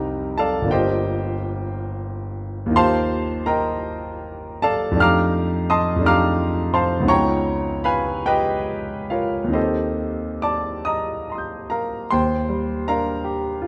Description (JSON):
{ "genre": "classical, impressionist solo piano", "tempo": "45-60 BPM (dotted quarters)", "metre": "6/8", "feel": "rubato", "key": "Eb lydian", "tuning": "A4 = 440 Hz", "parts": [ { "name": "clear concert grand piano", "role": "solo", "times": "0.0-13.7 s", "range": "G1 to G6", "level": "-22 LUFS", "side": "equal", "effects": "none" } ], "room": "moderate recital hall reverb, RT60 1.5 s", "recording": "close, detailed microphones", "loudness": "-22 LUFS", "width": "mono", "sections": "0.0-12.1 A section; 12.1-13.7 A section", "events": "none", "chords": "0.0 Cm7; 0.7 Gm7; 2.8 Ebadd9; 5.0 F13; 7.1 Db9; 9.6 Ebmaj9", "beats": "| 0.71 1.72 | 2.76 3.84 | 5.01 6.06 | 7.11 8.27 | 9.56 10.87 | 12.13 13.25" }